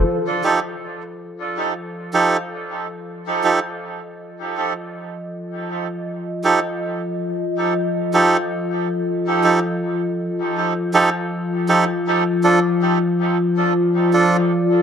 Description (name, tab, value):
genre	ambient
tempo	80 BPM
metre	4/4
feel	straight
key	F mixolydian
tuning	A4 = 440 Hz
part	warbly tape-like pad	sustained chords	0.0-14.8 s	F3 to Eb5	-21 LUFS	left 2 dB	chorus, built-in reverb
part	melodica	stabs	0.4-14.4 s	F3 to A4	-19 LUFS	right 3 dB	dub echo
room	moderate spring reverb, RT60 2.1 s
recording	echo-heavy mix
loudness	-17 LUFS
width	side -8 dB against mid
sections	0.1-14.8 A section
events	filter sweep on ambient pad 0.1-14.8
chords	0.1 F7; 12.1 Dm/F